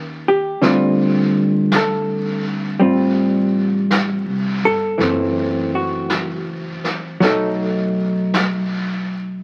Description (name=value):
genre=jazz ballad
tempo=55 BPM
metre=4/4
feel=swing 67% on 8ths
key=unclear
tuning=A4 = 443 Hz
part: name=hollow-body jazz guitar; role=accompaniment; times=0.0-9.4 s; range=D3 to Bb4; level=-20 LUFS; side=equal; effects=none
part: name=upright bass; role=bass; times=0.0-9.4 s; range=F#1 to Eb2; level=-32 LUFS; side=equal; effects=none
part: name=vintage brush drum kit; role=drums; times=0.6-9.4 s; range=brushed snare drum, hi-hat, snare drum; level=-27 LUFS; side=equal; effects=none
room=moderate studio reverb, RT60 0.6 s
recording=very old 78 rpm record, vinyl crackle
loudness=-19 LUFS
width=mono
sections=0.0-9.4 A section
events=none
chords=0.0 Eb7; 0.6 Dm7; 5.0 F#m7b5; 7.2 B7